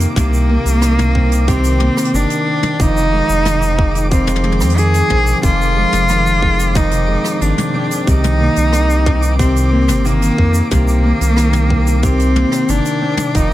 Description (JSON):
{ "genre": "folktronica", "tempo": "91 BPM", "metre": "4/4", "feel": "straight", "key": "C minor", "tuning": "A4 = 440 Hz", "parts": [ { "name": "rich cello", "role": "melody", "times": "0.0-13.5 s", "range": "Bb3 to Ab4", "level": "-17 LUFS", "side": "equal", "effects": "digital delay" }, { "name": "warbly tape-like pad", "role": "sustained chords", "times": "0.0-13.5 s", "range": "C3 to Bb4", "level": "-23 LUFS", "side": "equal", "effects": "chorus, built-in reverb" }, { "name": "nylon-string guitar", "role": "arpeggios", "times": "0.0-13.5 s", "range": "F2 to C4", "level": "-21 LUFS", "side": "equal", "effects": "digital delay" }, { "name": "warm sub bass", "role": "bass", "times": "0.0-13.5 s", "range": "F1 to F2", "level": "-15 LUFS", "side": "equal", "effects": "none" }, { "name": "jazz brush drum kit", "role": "drums", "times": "0.0-13.5 s", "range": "hi-hat, rim click, shaker, toms", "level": "-24 LUFS", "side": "left 1 dB", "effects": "none" }, { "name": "flickering grainy texture", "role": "texture", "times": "0.0-13.5 s", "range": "D6", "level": "-29 LUFS", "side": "right 3 dB", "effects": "built-in reverb" }, { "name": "electronic kick drum", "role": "drums", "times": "0.2-13.5 s", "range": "none", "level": "-16 LUFS", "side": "equal", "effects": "none" } ], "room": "small room ambience", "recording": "none", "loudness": "-12 LUFS", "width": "side -14 dB against mid", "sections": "0.0-13.5 A section", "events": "none", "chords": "0.0 Cm7; 2.8 Fm7; 8.1 Cm7" }